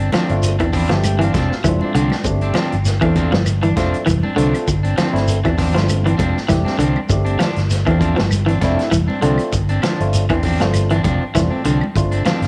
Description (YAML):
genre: afrobeat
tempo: 99 BPM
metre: 4/4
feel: swing 55% on 16ths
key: unclear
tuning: A4 = 439 Hz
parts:
  - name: electric guitar at the edge of break-up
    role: stabs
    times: 0.0-12.4 s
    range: F3 to D4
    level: -26 LUFS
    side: equal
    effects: spring reverb, cassette tape
  - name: fingered electric bass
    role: bass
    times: 0.0-12.5 s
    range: F1 to E2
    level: -21 LUFS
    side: equal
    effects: none
  - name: electric guitar at the edge of break-up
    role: arpeggios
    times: 0.1-12.4 s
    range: D3 to F3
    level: -23 LUFS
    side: equal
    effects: cassette tape, analog delay
  - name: vintage drum kit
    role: drums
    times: 0.1-12.5 s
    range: hi-hat, kick drum, snare drum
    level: -26 LUFS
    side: equal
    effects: cassette tape
  - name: claves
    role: percussion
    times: 0.1-12.4 s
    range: none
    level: -35 LUFS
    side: equal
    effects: none
  - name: congas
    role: percussion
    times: 0.1-12.4 s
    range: none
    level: -28 LUFS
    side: equal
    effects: none
  - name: shekere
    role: percussion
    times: 0.1-12.4 s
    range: none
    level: -26 LUFS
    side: equal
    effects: none
  - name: barky tine electric piano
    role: accompaniment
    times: 0.3-12.3 s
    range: A3 to B5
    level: -26 LUFS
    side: equal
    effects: phaser, cassette tape
room: studio ambience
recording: home recording on cassette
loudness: -17 LUFS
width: mono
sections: 0.0-12.5 A section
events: tine electric piano fill 0.4-2.3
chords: 0.0 G7sus4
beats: 0.44 1.05 1.65 | 2.26 2.86 3.47 4.07 | 4.68 5.28 5.89 6.49 | 7.10 7.71 8.31 8.92 | 9.53 10.13 10.74 11.34 | 11.95